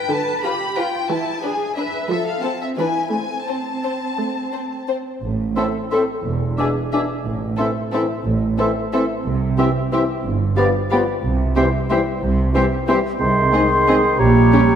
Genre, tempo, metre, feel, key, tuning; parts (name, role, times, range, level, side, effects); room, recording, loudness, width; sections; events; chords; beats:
classical, orchestral ballroom waltz; 161-196 BPM; 3/4; rubato; A minor; A4 = 439 Hz
muted symphonic violin section; melody; 0.0-14.6 s; Db5 to B5; -28 LUFS; left 5 dB
muted symphonic cello section; bass; 0.0-14.5 s; E2 to B4; -24 LUFS; right 3 dB
muted chamber viola section; accompaniment; 0.1-14.6 s; D3 to D4; -25 LUFS; equal
muted symphonic violin section; second line; 0.5-14.6 s; C4 to C5; -29 LUFS; left 4 dB
muted symphonic double bass section; bass; 5.2-14.5 s; E1 to C2; -22 LUFS; right 3 dB
clear oboe; second line; 5.6-14.8 s; C5 to E5; -27 LUFS; right 2 dB
dark clarinet; second line; 5.6-14.8 s; G4 to A4; -26 LUFS; left 3 dB
mellow hollow silver concert flute; second line; 5.6-14.8 s; Bb5 to D6; -26 LUFS; left 1 dB
warm bassoon; accompaniment; 5.6-14.8 s; A2 to G3; -27 LUFS; right 1 dB
mellow French horn section; sustained chords; 5.6-14.7 s; G3 to A4; -25 LUFS; left 3 dB
moderate concert hall reverb, RT60 2.1 s; -17 LUFS; side -8 dB against mid
0.0-5.2 A section; 5.2-14.8 B section
0.0 Bdim/D; 1.1 E; 2.1 F; 2.8 E; 3.1 Am; 6.2 E7; 7.3 Am; 9.3 C; 10.2 G7; 11.2 C; 13.2 Ab/C; 14.2 Gdim/Bb
| 0.11 0.44 0.78 | 1.10 1.43 1.78 | 2.11 2.44 2.79 | 3.13 3.48 3.85 | 4.19 4.53 4.89 | 5.23 5.57 5.92 | 6.25 6.58 6.93 | 7.25 7.58 7.94 | 8.26 8.59 8.94 | 9.26 9.58 9.93 | 10.25 10.57 10.92 | 11.24 11.56 11.90 | 12.22 12.54 12.88 | 13.20 13.53 13.88 | 14.20 14.53